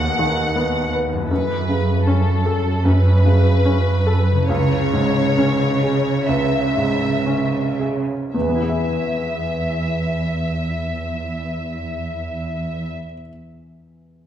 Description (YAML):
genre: cinematic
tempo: 53-81 BPM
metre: 4/4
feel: rubato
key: E major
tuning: A4 = 439 Hz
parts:
  - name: rich symphonic violin section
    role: melody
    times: 0.0-12.9 s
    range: A4 to F#5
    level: -25 LUFS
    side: left 2 dB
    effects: none
  - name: clear baby grand piano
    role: accompaniment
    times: 0.0-14.3 s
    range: C#2 to E5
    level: -22 LUFS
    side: equal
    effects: none
  - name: concert harp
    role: arpeggios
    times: 0.0-13.2 s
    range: F#2 to E5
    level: -28 LUFS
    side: left 5 dB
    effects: none
  - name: warm studio cello section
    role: bass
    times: 0.0-12.9 s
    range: D#2 to C#3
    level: -20 LUFS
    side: right 2 dB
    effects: none
room: wet recital hall reverb, RT60 1.7 s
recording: heard from further back in the room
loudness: -17 LUFS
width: side -10 dB against mid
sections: 0.0-8.3 A section; 8.3-12.6 B section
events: slowing down 0.0-8.3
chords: 0.0 B/D#; 1.3 F#m7; 4.5 C#m; 8.3 E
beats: 0.55 | 1.30 2.07 2.85 3.65 | 4.49 5.37 6.28 7.25 | 8.34 9.39 10.44 11.50